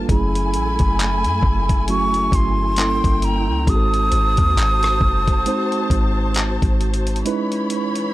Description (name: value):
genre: contemporary R&B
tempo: 67 BPM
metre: 4/4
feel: swing 58% on 16ths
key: unclear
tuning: A4 = 444 Hz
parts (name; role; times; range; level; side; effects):
- mellow tine electric piano; accompaniment; 0.0-8.1 s; F#3 to B#4; -24 LUFS; right 2 dB; slow stereo tremolo
- dark studio string section; sustained chords; 0.0-8.1 s; E3 to B5; -28 LUFS; left 2 dB; none
- soft 808-style bass; bass; 0.0-7.2 s; F#1 to F#2; -21 LUFS; equal; none
- breathy hollow jazz flute; melody; 0.1-6.4 s; Bb5 to D#6; -21 LUFS; right 1 dB; tape echo
- dusty soul sampler-style drum kit; drums; 0.1-8.1 s; handclaps, hi-hat, kick drum, rim click; -21 LUFS; equal; none
room: little or no reverb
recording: dry, gritty hardware recording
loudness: -16 LUFS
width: side -16 dB against mid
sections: 0.0-8.1 A section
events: break 7.3-8.1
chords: 0.1 F#m9; 2.8 Gdim7; 3.7 G#7b9; 7.3 C#m9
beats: | 0.09 0.98 1.88 2.78 | 3.67 4.57 5.46 6.36 | 7.25